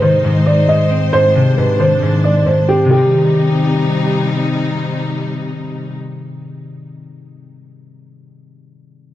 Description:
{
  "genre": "hip hop",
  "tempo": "135 BPM",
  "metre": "4/4",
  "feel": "half-time",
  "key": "C minor",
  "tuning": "A4 = 440 Hz",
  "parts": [
    { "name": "dark concert grand piano", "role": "melody", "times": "0.0-4.2 s", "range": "G4 to Eb5", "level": "-16 LUFS", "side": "right 2 dB", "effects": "low-pass filter" },
    { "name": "concert harp", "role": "accompaniment", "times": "0.0-6.8 s", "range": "Ab2 to C5", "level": "-15 LUFS", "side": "left 2 dB", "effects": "low-pass filter" },
    { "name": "warm symphonic string section", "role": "sustained chords", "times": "0.0-6.0 s", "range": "C3 to C5", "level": "-21 LUFS", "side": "left 1 dB", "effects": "none" }
  ],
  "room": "light reverb, small room ambience",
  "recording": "nothing above 10.8 kHz",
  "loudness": "-12 LUFS",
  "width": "side -13 dB against mid",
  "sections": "0.0-2.9 A section; 2.9-6.5 B section",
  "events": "none",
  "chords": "0.0 Ab; 2.9 Cm"
}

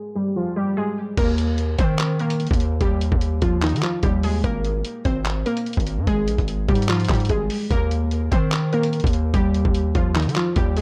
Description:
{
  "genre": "hip hop, trap",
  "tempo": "147 BPM",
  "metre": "4/4",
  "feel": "half-time",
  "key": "Eb major",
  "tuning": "A4 = 441 Hz",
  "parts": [
    { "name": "glassy wavetable pluck", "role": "melody", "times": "0.0-10.8 s", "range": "Eb3 to C5", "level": "-26 LUFS", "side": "equal", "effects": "chorus, dub echo" },
    { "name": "distorted 808-style bass", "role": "bass", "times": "1.2-10.8 s", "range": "Ab1 to Eb3", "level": "-24 LUFS", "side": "equal", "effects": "distortion" },
    { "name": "lo-fi sampler-style drum kit", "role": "drums", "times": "1.2-10.8 s", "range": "crash cymbal, handclaps, hi-hat, kick drum", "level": "-26 LUFS", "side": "equal", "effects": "none" }
  ],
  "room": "little or no reverb",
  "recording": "echo-heavy mix, low-pass filter",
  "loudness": "-21 LUFS",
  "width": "mono",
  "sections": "0.0-1.2 A section; 1.2-10.8 B section",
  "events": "filter sweep 0.0-1.2",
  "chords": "0.0 N.C.; 1.2 Eb; 4.4 Abadd9; 7.7 Eb"
}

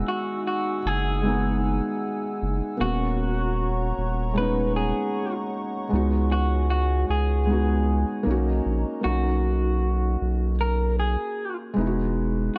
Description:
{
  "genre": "lo-fi hip hop",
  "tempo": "77 BPM",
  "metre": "4/4",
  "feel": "swing 57% on 16ths",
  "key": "B major",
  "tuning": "A4 = 439 Hz",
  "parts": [
    { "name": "felt-muted upright piano", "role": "accompaniment", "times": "0.0-12.6 s", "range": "G#3 to G#4", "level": "-30 LUFS", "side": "equal", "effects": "low-pass filter" },
    { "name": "dark analog pad", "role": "sustained chords", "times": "0.0-9.0 s", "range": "D#4 to E6", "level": "-36 LUFS", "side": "equal", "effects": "chorus, low-pass filter" },
    { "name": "saturated sub bass", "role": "bass", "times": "0.0-12.5 s", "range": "D#1 to C#2", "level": "-26 LUFS", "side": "equal", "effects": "none" },
    { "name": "electric guitar through a small old amp", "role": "melody", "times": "0.1-12.6 s", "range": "F#4 to B4", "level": "-32 LUFS", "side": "equal", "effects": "low-pass filter" }
  ],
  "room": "light reverb",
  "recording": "dark, warm production",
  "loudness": "-25 LUFS",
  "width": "mono",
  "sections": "0.0-9.0 A section; 9.0-12.6 B section",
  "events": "none",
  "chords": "0.0 Emaj9; 2.8 G#m11/D#; 5.9 C#7sus4; 8.3 Bmaj9; 11.8 Emaj9"
}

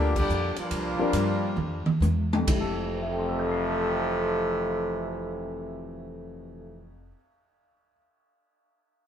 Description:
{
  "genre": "jazz, big band swing",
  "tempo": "128-148 BPM",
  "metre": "4/4",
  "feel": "swing 67% on 8ths",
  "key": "F major",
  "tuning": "A4 = 440 Hz",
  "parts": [
    { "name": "mellow trumpet section", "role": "melody", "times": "0.0-2.0 s", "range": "G3 to G4", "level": "-31 LUFS", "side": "left 1 dB", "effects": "none" },
    { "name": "clear trombone section", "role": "second line", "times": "0.0-7.0 s", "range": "F2 to A3", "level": "-29 LUFS", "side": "equal", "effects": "none" },
    { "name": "warm baby grand piano", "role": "accompaniment", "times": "0.0-8.0 s", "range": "F2 to C7", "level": "-32 LUFS", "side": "left 4 dB", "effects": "none" },
    { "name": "upright bass", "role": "bass", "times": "0.0-7.1 s", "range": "F1 to G2", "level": "-31 LUFS", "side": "equal", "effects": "none" },
    { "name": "swinging big-band drum kit", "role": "drums", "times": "0.2-2.6 s", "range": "crash cymbal, hi-hat, kick drum, ride cymbal, toms", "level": "-30 LUFS", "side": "right 1 dB", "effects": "none" }
  ],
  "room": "moderate studio reverb, RT60 0.6 s",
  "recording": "band playing live in one room",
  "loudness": "-25 LUFS",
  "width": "side -9 dB against mid",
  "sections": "0.0-2.5 A section; 2.5-6.2 B section",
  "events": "slowing down 0.0-2.5; band accent 0.1; drum fill 1.6-2.5",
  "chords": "0.0 Gm7; 0.7 C9sus4; 2.5 Fmaj7"
}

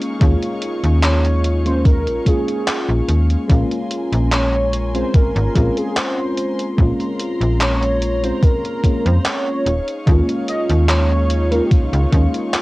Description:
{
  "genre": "vaporwave",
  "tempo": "73 BPM",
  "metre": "4/4",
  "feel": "straight",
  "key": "Bb minor",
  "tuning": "A4 = 440 Hz",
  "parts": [
    { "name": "mellow FM electric piano", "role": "accompaniment", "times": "0.0-12.6 s", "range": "Ab3 to F4", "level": "-21 LUFS", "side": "equal", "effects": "lush chorus, cassette tape, analog delay" },
    { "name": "dark studio string section", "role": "sustained chords", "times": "0.0-12.6 s", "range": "Eb4 to Db6", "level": "-33 LUFS", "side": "left 1 dB", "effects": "vintage 12-bit sampler grit, cassette tape, plate reverb" },
    { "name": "gated 80s digital drum machine", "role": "drums", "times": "0.0-12.6 s", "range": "handclaps, hi-hat", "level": "-22 LUFS", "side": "equal", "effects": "gated reverb, cassette tape" },
    { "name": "slap-like FM bass", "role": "bass", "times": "0.2-12.3 s", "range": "Eb1 to F2", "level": "-17 LUFS", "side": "equal", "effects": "transformer saturation" },
    { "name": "electronic kick drum", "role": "drums", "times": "0.2-12.3 s", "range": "none", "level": "-14 LUFS", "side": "equal", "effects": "overdrive, cassette tape" },
    { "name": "warm velvety synth lead", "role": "melody", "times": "1.0-12.6 s", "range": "F4 to Eb5", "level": "-24 LUFS", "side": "right 1 dB", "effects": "chorus, cassette tape, tape echo, plate reverb" }
  ],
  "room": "light reverb",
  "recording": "home recording on cassette",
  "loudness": "-15 LUFS",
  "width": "side -20 dB against mid",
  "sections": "0.0-12.6 A section",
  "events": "none",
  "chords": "0.0 Eb9sus4; 3.5 Bbm9; 9.7 Eb9sus4"
}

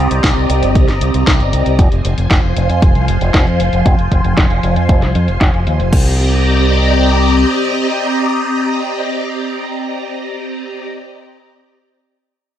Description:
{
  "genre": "italo disco",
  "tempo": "116 BPM",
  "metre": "4/4",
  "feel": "straight",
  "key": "C minor",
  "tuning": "A4 = 440 Hz",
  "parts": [
    { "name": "phased string machine", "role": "sustained chords", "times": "0.0-10.8 s", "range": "F3 to C6", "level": "-16 LUFS", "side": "equal", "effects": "ensemble chorus, phaser" },
    { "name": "fingered electric bass with an envelope filter", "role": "bass", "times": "0.0-7.4 s", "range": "F1 to F2", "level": "-14 LUFS", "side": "equal", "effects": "none" },
    { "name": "house drum kit", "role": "drums", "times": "0.1-6.0 s", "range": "crash cymbal, hi-hat, snare drum", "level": "-20 LUFS", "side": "equal", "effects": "overdrive, low-pass filter on hats, small room ambience, low-pass filter on snare, low-pass filter on cymbals" },
    { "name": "electronic kick drum", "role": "drums", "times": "0.2-6.0 s", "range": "none", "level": "-12 LUFS", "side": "equal", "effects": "overdrive, small room ambience" }
  ],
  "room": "light reverb",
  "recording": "none",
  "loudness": "-11 LUFS",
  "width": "side -11 dB against mid",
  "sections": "0.0-5.9 A section; 5.9-10.1 B section",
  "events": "none",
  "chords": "0.0 Cm7; 1.8 Fm; 5.9 Cm7"
}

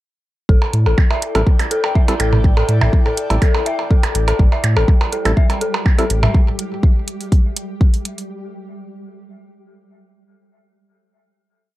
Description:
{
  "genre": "minimal techno",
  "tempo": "123 BPM",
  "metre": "4/4",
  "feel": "straight",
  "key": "unclear",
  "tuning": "A4 = 440 Hz",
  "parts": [
    { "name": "dark detuned synth bell", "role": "riff", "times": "0.5-6.3 s", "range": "A4 to E5", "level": "-24 LUFS", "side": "left 2 dB", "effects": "chorus, sidechain pumping, dub echo" },
    { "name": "round analog bass", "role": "bass", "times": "0.5-6.3 s", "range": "A1 to A2", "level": "-16 LUFS", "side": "equal", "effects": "tube saturation, sidechain pumping" },
    { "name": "electronic kick drum", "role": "drums", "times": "0.5-7.9 s", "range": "none", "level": "-13 LUFS", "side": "equal", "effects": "none" },
    { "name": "airy breathy pad", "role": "texture", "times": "0.5-6.3 s", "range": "E4 to G5", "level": "-26 LUFS", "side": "left 1 dB", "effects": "chorus, phaser, sidechain pumping" },
    { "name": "electronic percussion blips and toms", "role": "percussion", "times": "0.6-6.3 s", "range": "none", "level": "-22 LUFS", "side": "right 3 dB", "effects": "digital delay" },
    { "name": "electronic hi-hat", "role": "drums", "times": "0.7-8.3 s", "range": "none", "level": "-26 LUFS", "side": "right 2 dB", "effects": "none" },
    { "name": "percussive organ stab", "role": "stabs", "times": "1.4-6.0 s", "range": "G3 to A4", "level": "-24 LUFS", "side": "right 1 dB", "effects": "chorus, digital delay" },
    { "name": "flickering grainy texture", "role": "texture", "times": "4.7-8.3 s", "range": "G3 to G4", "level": "-30 LUFS", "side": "right 1 dB", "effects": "built-in reverb, sidechain pumping" }
  ],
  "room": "little or no reverb",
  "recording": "dark, warm production",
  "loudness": "-14 LUFS",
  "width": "side -16 dB against mid",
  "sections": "0.5-8.3 groove",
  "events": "none",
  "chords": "0.5 A7(no3)"
}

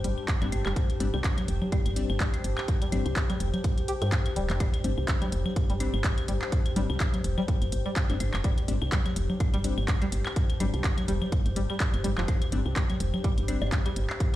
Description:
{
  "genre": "minimal techno",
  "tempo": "125 BPM",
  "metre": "4/4",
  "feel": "swing 56% on 16ths",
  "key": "unclear",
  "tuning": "A4 = 440 Hz",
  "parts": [
    { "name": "string-like resonator pluck", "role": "riff", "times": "0.0-14.4 s", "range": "F3 to G4", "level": "-36 LUFS", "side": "equal", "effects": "chorus, phaser, sidechain pumping, tape echo" },
    { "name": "woody FM bass", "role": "bass", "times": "0.0-14.1 s", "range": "D1 to G2", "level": "-28 LUFS", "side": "equal", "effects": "tube saturation, sidechain pumping" },
    { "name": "minimal click drum kit", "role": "drums", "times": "0.0-14.4 s", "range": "handclaps, hi-hat", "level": "-35 LUFS", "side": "equal", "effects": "none" },
    { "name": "warbly tape-like pad", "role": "texture", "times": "0.0-14.4 s", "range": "D4 to G5", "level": "-37 LUFS", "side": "left 2 dB", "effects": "chorus, built-in reverb, phaser, sidechain pumping" },
    { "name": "claves, congas and bongos", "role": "percussion", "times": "0.2-14.4 s", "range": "none", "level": "-36 LUFS", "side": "left 1 dB", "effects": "tape echo" },
    { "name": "electronic kick drum", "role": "drums", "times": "0.3-14.3 s", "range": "none", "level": "-26 LUFS", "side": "equal", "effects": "none" },
    { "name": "wavetable chord stab", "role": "stabs", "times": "0.4-13.6 s", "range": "G3 to D4", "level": "-36 LUFS", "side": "left 5 dB", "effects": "tape echo" }
  ],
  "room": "light reverb",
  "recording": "played on a big sound system in a bare room, large studio reverb",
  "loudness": "-25 LUFS",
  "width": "side -14 dB against mid",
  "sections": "0.0-14.4 A section",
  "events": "filter sweep on synth pluck 0.0-14.4",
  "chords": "0.0 Gsus4"
}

